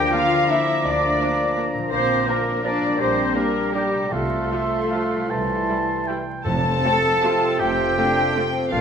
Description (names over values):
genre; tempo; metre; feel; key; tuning
classical, orchestral ballroom waltz; 145-180 BPM; 3/4; rubato; F major; A4 = 441 Hz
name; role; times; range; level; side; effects
dark studio violin section; melody; 0.0-8.8 s; G3 to A5; -28 LUFS; left 3 dB; none
dark studio violin section; second line; 0.0-8.5 s; F4 to G5; -26 LUFS; left 2 dB; none
mellow clarinet; second line; 0.0-8.8 s; C4 to G5; -29 LUFS; left 1 dB; none
silver concert flute; second line; 0.0-8.8 s; F5 to D6; -29 LUFS; left 1 dB; none
warm oboe; second line; 0.0-8.8 s; F4 to Bb5; -27 LUFS; right 3 dB; none
mellow bassoon; accompaniment; 0.0-8.8 s; E3 to A3; -29 LUFS; right 2 dB; none
warm French horn section; sustained chords; 0.0-8.8 s; F3 to Bb4; -28 LUFS; left 2 dB; none
concert harp; arpeggios; 0.0-8.8 s; F2 to Bb4; -30 LUFS; left 5 dB; none
rich studio double bass section; bass; 0.0-8.8 s; F1 to D2; -31 LUFS; right 4 dB; none
warm studio cello section; bass; 0.0-8.8 s; G3 to A4; -29 LUFS; right 4 dB; none
warm studio viola section; accompaniment; 0.1-8.4 s; F3 to F4; -33 LUFS; right 1 dB; none
timpani; percussion; 4.1-7.0 s; F2 to C3; -30 LUFS; equal; none
clear trombone section; sustained chords; 6.5-8.8 s; Bb2 to F3; -29 LUFS; right 4 dB; none
room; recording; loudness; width
wet recital hall reverb, RT60 1.6 s; minimal, uncompressed stereo recording, vinyl crackle; -18 LUFS; side -7 dB against mid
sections
0.0-6.5 A section; 6.5-8.8 B section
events
none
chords
0.0 Bb/D; 1.9 Bb; 3.0 Gm/Bb; 4.1 F/C; 5.3 C; 6.5 F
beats
0.13 0.50 | 0.85 1.21 1.58 | 1.93 2.29 2.66 | 3.00 3.36 3.75 | 4.13 4.52 4.93 | 5.31 5.69 6.08 | 6.45 6.83 7.23 | 7.60 7.97 8.36 | 8.71